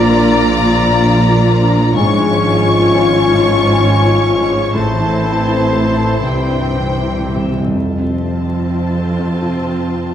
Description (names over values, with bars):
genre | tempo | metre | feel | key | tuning
cinematic | 78-88 BPM | 4/4 | rubato | unclear | A4 = 439 Hz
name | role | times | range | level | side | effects
warm symphonic violin section | melody | 0.0-7.5 s | G5 to Db6 | -20 LUFS | left 3 dB | none
clear oboe | second line | 0.0-7.4 s | C5 to D5 | -24 LUFS | right 2 dB | none
mellow clarinet | second line | 0.0-7.4 s | E4 to F4 | -22 LUFS | left 4 dB | none
mellow hollow large flute ensemble | second line | 0.0-7.4 s | G5 to Bb5 | -24 LUFS | left 3 dB | none
rich symphonic violin section | second line | 0.0-10.1 s | C5 to A5 | -24 LUFS | left 1 dB | none
felt-muted upright piano | accompaniment | 0.0-10.1 s | C2 to Db5 | -20 LUFS | left 1 dB | none
warm symphonic viola section | accompaniment | 0.0-10.1 s | C4 to F4 | -23 LUFS | right 1 dB | none
mellow French horn section | sustained chords | 0.0-7.4 s | E3 to D4 | -22 LUFS | left 1 dB | none
concert harp | arpeggios | 0.0-10.1 s | F2 to Db6 | -22 LUFS | left 3 dB | none
rich symphonic double bass section | bass | 0.0-7.5 s | Ab1 to C2 | -19 LUFS | right 2 dB | none
warm symphonic cello section | bass | 0.0-10.1 s | F2 to C3 | -19 LUFS | right 1 dB | none
timpani | percussion | 6.2-7.7 s | C3 | -23 LUFS | right 2 dB | none
room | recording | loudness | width
wet recital hall reverb, RT60 1.3 s | recorded in a church or concert hall, vinyl crackle | -11 LUFS | side -10 dB against mid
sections
0.0-7.8 A section; 7.8-10.1 B section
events
timpani fill 6.2-7.8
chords
0.0 Bb; 2.0 Db/Ab; 4.7 Am; 6.2 C; 7.8 F